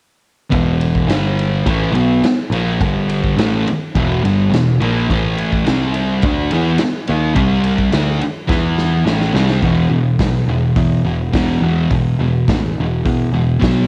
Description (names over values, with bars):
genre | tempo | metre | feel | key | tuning
garage rock duo or trio | 106 BPM | 4/4 | straight | unclear | A4 = 440 Hz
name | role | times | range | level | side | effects
fuzz guitar | riff | 0.5-13.9 s | E2 to E4 | -18 LUFS | equal | distortion, cassette tape
picked electric bass | bass | 0.5-13.9 s | E1 to E2 | -22 LUFS | equal | none
raw garage drum kit | drums | 0.5-13.8 s | hi-hat, kick drum, ride cymbal, snare drum | -23 LUFS | equal | none
room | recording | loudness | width
moderate studio reverb, RT60 0.6 s | home recording on cassette | -16 LUFS | mono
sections
0.5-9.6 A section; 9.6-13.9 B section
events
drum fill 8.5-9.6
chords
0.5 E5; 1.1 G5; 1.7 E5; 2.8 G5; 3.4 E5; 5.1 A5; 5.7 C5; 6.2 A5; 7.4 C5; 7.9 Asus4; 8.5 E5; 9.1 A5; 9.6 E5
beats
| 0.53 1.10 1.67 2.24 | 2.81 3.38 3.95 4.52 | 5.09 5.66 6.23 6.80 | 7.37 7.93 8.50 9.07 | 9.64 10.21 10.78 11.34 | 11.91 12.48 13.04 13.61